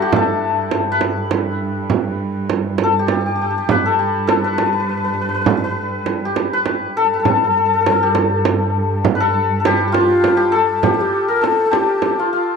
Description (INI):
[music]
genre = Persian modal ensemble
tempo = 67 BPM (dotted quarters)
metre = 6/8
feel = straight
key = G dastgah mahur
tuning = A4 = 442 Hz
[part]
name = santur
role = melody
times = 0.0-12.6 s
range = D4 to B4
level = -18 LUFS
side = left 4 dB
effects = tape echo
[part]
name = rich symphonic cello section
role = drone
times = 0.0-10.9 s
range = G2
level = -24 LUFS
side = right 2 dB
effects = none
[part]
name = frame drum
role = percussion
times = 0.1-12.2 s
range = none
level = -19 LUFS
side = right 8 dB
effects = none
[part]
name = breathy ney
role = second line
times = 10.0-12.6 s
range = F4 to Bb4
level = -18 LUFS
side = equal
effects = none
[sound]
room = light reverb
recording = dry, close 1970s-style studio recording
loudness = -15 LUFS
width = side -5 dB against mid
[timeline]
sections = 0.0-10.8 A section; 10.8-12.6 B section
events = none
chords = none